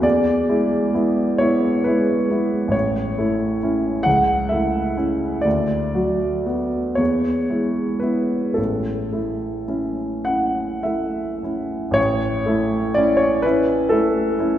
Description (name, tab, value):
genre	classical, romantic nocturne for solo piano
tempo	34-46 BPM (dotted quarters)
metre	6/8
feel	rubato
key	A major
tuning	A4 = 441 Hz
part	warm grand piano	solo	0.0-14.6 s	A1 to F#5	-18 LUFS	equal	none
room	wet concert hall reverb, RT60 2.0 s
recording	recorded in a church or concert hall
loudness	-18 LUFS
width	side -11 dB against mid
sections	0.0-12.0 A section; 12.0-14.6 A section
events	none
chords	0.0 E7; 2.7 A; 4.1 A/C#; 5.4 Bm/D; 7.0 E; 8.6 A